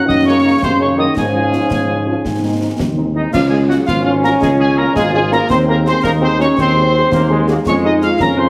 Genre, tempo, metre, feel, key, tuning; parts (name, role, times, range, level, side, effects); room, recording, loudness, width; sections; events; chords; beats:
military-style march for wind band; 111 BPM (dotted quarters); 6/8; straight; Db major; A4 = 440 Hz
mellow euphonium; second line; 0.0-8.5 s; Ab2 to F4; -22 LUFS; equal
piccolo; second line; 0.0-8.5 s; Eb5 to F6; -23 LUFS; equal
clear trombone section; sustained chords; 0.0-8.5 s; Eb3 to F4; -23 LUFS; equal
mellow trumpet section; melody; 0.1-8.5 s; Eb4 to F5; -24 LUFS; equal
mellow tuba; bass; 0.1-8.5 s; Ab1 to Ab2; -19 LUFS; equal
concert snare drum, concert bass drum and clash cymbals; drums; 0.1-8.4 s; -25 LUFS; equal
mellow French horn section; accompaniment; 0.3-8.5 s; F3 to Ab4; -26 LUFS; equal
wet large studio reverb, RT60 1.2 s; heavily compressed radio sound; -14 LUFS; mono
0.0-3.3 A section; 3.3-8.5 B section
0.0 Ebm/Gb; 1.2 Db/Ab; 2.2 Ab; 3.3 Db; 5.5 Ab7/Eb; 7.7 Db/F
| 0.08 0.62 | 1.17 1.71 | 2.25 2.79 | 3.33 3.87 | 4.42 4.96 | 5.50 6.04 | 6.58 7.12 | 7.66 8.20